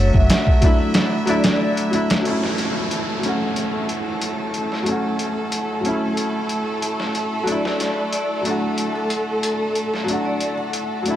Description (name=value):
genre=trip hop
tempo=92 BPM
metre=4/4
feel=straight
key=F# minor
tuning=A4 = 436 Hz
part: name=vibraphone with medium mallets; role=melody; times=0.0-1.7, 7.5-11.2 s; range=A4 to F#5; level=-26 LUFS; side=equal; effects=tape echo
part: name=warm upright piano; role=accompaniment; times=0.0-11.2 s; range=F#3 to F#4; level=-22 LUFS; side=left 1 dB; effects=harmonic tremolo, tape echo
part: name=rich studio violin section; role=sustained chords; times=0.0-11.2 s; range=A3 to E5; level=-28 LUFS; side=right 1 dB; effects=none
part: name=wind-like tuned noise texture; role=texture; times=0.0-11.2 s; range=F#3 to C#6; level=-35 LUFS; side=right 2 dB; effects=none
part: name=trip hop sampler-style drum kit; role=drums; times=0.1-11.2 s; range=hi-hat, kick drum, snare drum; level=-21 LUFS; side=equal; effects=high-pass filter on hats, high-pass filter on snare, high-pass filter on kick, high-pass filter on room
part: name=downlifter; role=sound effects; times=2.3-7.5 s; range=none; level=-30 LUFS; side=right 1 dB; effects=none
room=light reverb, digital ambience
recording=none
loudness=-18 LUFS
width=side -12 dB against mid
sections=0.0-2.3 A section; 2.3-11.2 B section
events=break 0.9-2.3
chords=0.0 Dadd9/F#; 2.3 F#m7; 7.5 Dadd9/F#